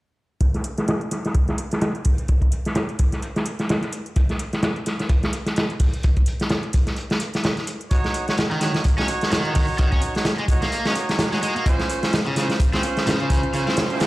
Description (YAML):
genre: breakbeat, breaks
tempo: 128 BPM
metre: 4/4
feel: swing 57% on 16ths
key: Eb dorian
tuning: A4 = 438 Hz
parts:
  - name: crunchy breakbeat drum kit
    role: drums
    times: 0.4-14.1 s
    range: hi-hat, kick drum, snare drum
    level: -20 LUFS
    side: equal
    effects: low-pass filter on kick, low-pass filter on hats, low-pass filter on snare, low-pass filter on room
  - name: electronic hi-hat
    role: drums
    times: 0.4-14.1 s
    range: none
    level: -36 LUFS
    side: equal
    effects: none
  - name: clear horn section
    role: stabs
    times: 7.9-14.0 s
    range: Db4 to Db5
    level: -25 LUFS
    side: right 2 dB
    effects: digital delay
  - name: cranked stack guitar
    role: riff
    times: 8.5-13.7 s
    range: Db3 to Db4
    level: -26 LUFS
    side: equal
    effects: overdrive, tube saturation, digital delay
  - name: noise sweep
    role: sound effects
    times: 13.7-14.1 s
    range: none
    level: -28 LUFS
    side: right 4 dB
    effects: none
room: light reverb, small room ambience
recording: played on a big sound system in a bare room, large studio reverb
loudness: -19 LUFS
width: side -18 dB against mid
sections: 0.4-14.1 A section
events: filter sweep on drum 0.4-14.1; noise sweep 13.7-14.1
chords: 0.4 N.C.; 7.9 Ebm7; 11.7 Dbmaj7